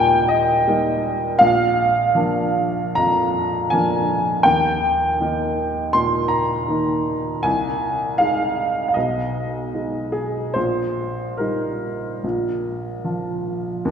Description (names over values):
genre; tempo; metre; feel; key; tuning
classical, romantic character piece for solo piano; 71-84 BPM; 4/4; rubato; Eb major; A4 = 443 Hz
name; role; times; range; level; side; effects
warm upright piano; solo; 0.0-13.9 s; Bb1 to C6; -18 LUFS; equal; none
room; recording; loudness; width
wet church reverb, RT60 2.9 s; recorded in a church or concert hall; -18 LUFS; side -7 dB against mid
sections
0.0-13.8 A section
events
none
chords
0.0 Eb; 1.4 Bb; 4.5 Eb; 7.4 Ab/C; 8.9 Abm/Cb; 10.6 Eb/Bb; 12.2 Bb5